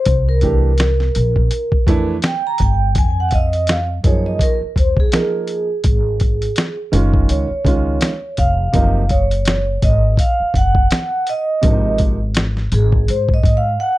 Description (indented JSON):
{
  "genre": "hip hop, jazz-hop",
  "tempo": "83 BPM",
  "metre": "4/4",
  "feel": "swing 58% on 16ths",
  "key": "unclear",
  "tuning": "A4 = 442 Hz",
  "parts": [
    { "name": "vibraphone with soft mallets", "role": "melody", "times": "0.0-14.0 s", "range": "Ab4 to Bb5", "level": "-20 LUFS", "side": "right 2 dB", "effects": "slapback echo" },
    { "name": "upright bass", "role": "bass", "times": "0.1-13.7 s", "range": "F1 to Ab2", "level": "-17 LUFS", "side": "equal", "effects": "none" },
    { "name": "dusty soul sampler-style drum kit", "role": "drums", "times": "0.1-13.6 s", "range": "hi-hat, kick drum, snare drum", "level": "-17 LUFS", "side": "equal", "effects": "none" },
    { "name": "warm upright piano", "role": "accompaniment", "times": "0.4-12.2 s", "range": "C3 to Bb4", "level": "-21 LUFS", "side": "right 3 dB", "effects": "none" }
  ],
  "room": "little or no reverb",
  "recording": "dark, warm production",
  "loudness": "-14 LUFS",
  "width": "side -16 dB against mid",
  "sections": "0.0-14.0 A section",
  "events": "vibraphone solo 0.0-14.0; drums muted 13.8",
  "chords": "0.1 C7; 3.0 Fm7; 5.8 Ab5; 7.3 Db; 8.7 Gbmaj7(no3); 11.6 Ab"
}